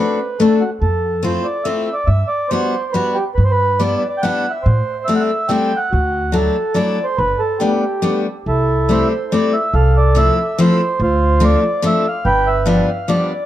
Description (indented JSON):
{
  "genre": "musette waltz",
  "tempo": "142 BPM",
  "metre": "3/4",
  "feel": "straight",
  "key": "G major, C major from 8.5 s",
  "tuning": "A4 = 439 Hz",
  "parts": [
    { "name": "mellow accordion", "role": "melody", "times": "0.0-13.5 s", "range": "E4 to G5", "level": "-18 LUFS", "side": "right 2 dB", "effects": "plate reverb, tape echo" },
    { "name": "picked steel-string acoustic guitar", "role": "accompaniment", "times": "0.0-13.3 s", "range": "F3 to F#4", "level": "-17 LUFS", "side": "left 3 dB", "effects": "none" },
    { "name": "upright bass", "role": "bass", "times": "0.8-12.8 s", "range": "G1 to A2", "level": "-16 LUFS", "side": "equal", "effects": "none" }
  ],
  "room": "moderate studio ambience, RT60 0.5 s",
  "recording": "dark, warm production",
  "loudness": "-14 LUFS",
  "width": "side -12 dB against mid",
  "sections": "0.0-8.5 A section; 8.5-13.5 B section",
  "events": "none",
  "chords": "0.0 D7; 0.8 Fmaj7; 2.1 Gmaj7; 3.4 Em7/G; 4.7 Am7; 5.9 Dadd9; 7.2 Gadd9; 8.5 C6; 9.7 Fmaj7/C; 11.0 Dm7; 12.3 G7"
}